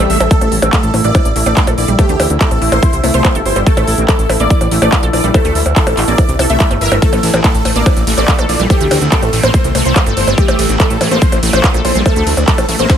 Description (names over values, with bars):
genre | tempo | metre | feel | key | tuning
psychedelic trance | 143 BPM | 4/4 | straight | A phrygian | A4 = 443 Hz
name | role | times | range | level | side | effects
pulsing gated texture | sustained chords | 0.0-13.0 s | E3 to E4 | -20 LUFS | left 1 dB | chorus, built-in reverb, sidechain pumping
wide unison pluck | riff | 0.0-12.9 s | G3 to Bb4 | -20 LUFS | right 1 dB | auto-pan, cassette tape, sidechain pumping, tape echo
fat analog bass | bass | 0.0-12.9 s | G1 to D2 | -15 LUFS | equal | none
warbly tape-like pad | texture | 0.0-13.0 s | E6 | -25 LUFS | right 1 dB | chorus, built-in reverb, sidechain pumping
dense compressed supersaw | melody | 0.1-13.0 s | G4 to E5 | -19 LUFS | equal | phaser, sidechain pumping, tape echo
techno drum kit | drums | 0.1-13.0 s | handclaps, hi-hat, percussion blips, ride cymbal, snare drum | -17 LUFS | equal | none
electronic kick drum | drums | 0.3-13.0 s | none | -12 LUFS | equal | overdrive
vowel-sweep wobble bass | second line | 0.6-12.4 s | A3 to C4 | -30 LUFS | right 2 dB | none
room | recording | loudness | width
little or no reverb | none | -9 LUFS | side -9 dB against mid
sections
0.0-13.0 A section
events
break 0.0-0.3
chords
0.0 A5